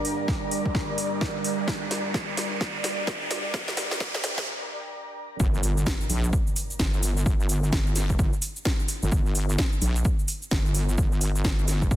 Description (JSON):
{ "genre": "bass house", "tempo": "129 BPM", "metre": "4/4", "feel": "swing 61% on 16ths", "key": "G minor", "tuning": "A4 = 444 Hz", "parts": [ { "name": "dark analog pad", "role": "sustained chords", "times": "0.0-5.4 s", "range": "G3 to D5", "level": "-34 LUFS", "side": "right 2 dB", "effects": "chorus, phaser, sidechain pumping" }, { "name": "house drum kit", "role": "drums", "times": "0.0-12.0 s", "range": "hi-hat, shaker, snare drum", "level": "-30 LUFS", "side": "equal", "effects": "overdrive, high-pass filter on hats, high-pass filter on snare, high-pass filter on perc, high-pass filter on room" }, { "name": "riser and impact", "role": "sound effects", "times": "0.0-7.3 s", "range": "none", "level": "-33 LUFS", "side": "right 1 dB", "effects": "none" }, { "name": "granular cloud pad", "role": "texture", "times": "0.0-4.5 s", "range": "G4 to Bb5", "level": "-34 LUFS", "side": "equal", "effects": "built-in reverb, sidechain pumping" }, { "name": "electronic kick drum", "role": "drums", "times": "0.3-12.0 s", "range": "none", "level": "-26 LUFS", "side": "equal", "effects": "overdrive" }, { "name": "wobble bass", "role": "bass", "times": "5.4-12.0 s", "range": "G1 to Bb1", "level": "-25 LUFS", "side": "equal", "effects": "chorus, tube saturation, sidechain pumping" } ], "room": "light reverb", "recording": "dense, heavily limited modern master, high-pass filter", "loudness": "-23 LUFS", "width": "side -13 dB against mid", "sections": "0.0-5.4 A section; 5.4-12.0 B section", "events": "build-up 0.0-5.4; drum fill 0.0-4.5; riser 0.0-4.5; filter sweep on analog synth pad 0.0-5.4; filter sweep 0.0-5.4; break 4.5-5.4; drop 5.4-12.0; impact 5.4-7.3", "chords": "0.0 Gm; 5.4 N.C." }